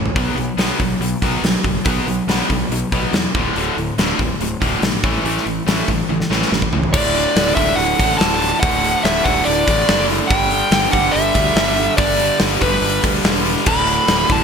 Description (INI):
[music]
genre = hard rock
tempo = 142 BPM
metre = 4/4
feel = straight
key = D major from 6.9 s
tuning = A4 = 440 Hz
[part]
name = cranked stack guitar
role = riff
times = 0.0-14.4 s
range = D2 to B3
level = -23 LUFS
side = right 12 dB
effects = overdrive, lush chorus
[part]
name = tight distorted guitar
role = riff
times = 0.0-14.4 s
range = D2 to B3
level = -22 LUFS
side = left 11 dB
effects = distortion
[part]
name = fuzz fingered electric bass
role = bass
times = 0.0-14.4 s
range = D1 to E2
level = -24 LUFS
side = equal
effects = overdrive
[part]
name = gated 80s drum kit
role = drums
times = 0.1-14.4 s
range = crash cymbal, hi-hat, kick drum, snare drum, toms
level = -19 LUFS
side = left 1 dB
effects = gated reverb
[part]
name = dark smooth lead guitar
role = melody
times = 6.9-14.4 s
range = B4 to B5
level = -18 LUFS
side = right 1 dB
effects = overdrive, digital delay
[sound]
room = moderate lush hall reverb, RT60 1.7 s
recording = bright 1980s-style digital production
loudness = -14 LUFS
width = side -6 dB against mid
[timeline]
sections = 0.0-6.9 A section; 6.9-14.4 B section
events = drum fill 0.0, 6.1-6.9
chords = 0.2 B5; 3.3 D5; 5.0 A5; 6.9 D; 10.3 G5; 13.7 D5